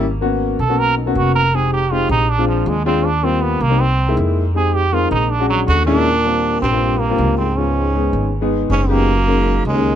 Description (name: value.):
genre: jazz.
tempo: 159 BPM.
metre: 4/4.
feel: straight.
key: Eb major.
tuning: A4 = 438 Hz.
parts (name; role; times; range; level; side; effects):
trombone with metal mute; melody; 0.0-10.0 s; F3 to Bb4; -19 LUFS; right 5 dB; tape echo.
warm grand piano; accompaniment; 0.0-10.0 s; G3 to Bb4; -20 LUFS; left 4 dB; none.
upright bass; bass; 0.0-10.0 s; F1 to F2; -18 LUFS; equal; none.
breathy baritone saxophone; second line; 5.7-10.0 s; Eb2 to D3; -22 LUFS; left 3 dB; none.
room: light reverb.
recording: dark, warm production.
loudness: -14 LUFS.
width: side -10 dB against mid.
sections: 0.0-6.1 A section; 6.1-10.0 B section.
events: trombone solo 0.0-6.1.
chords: 0.0 Abm11; 1.5 Fm7; 2.3 Bb7; 3.0 Eb69; 3.8 C7alt; 4.5 Fm7; 5.3 Bb7alt; 6.1 Eb69; 7.6 Db9; 9.1 Gb69.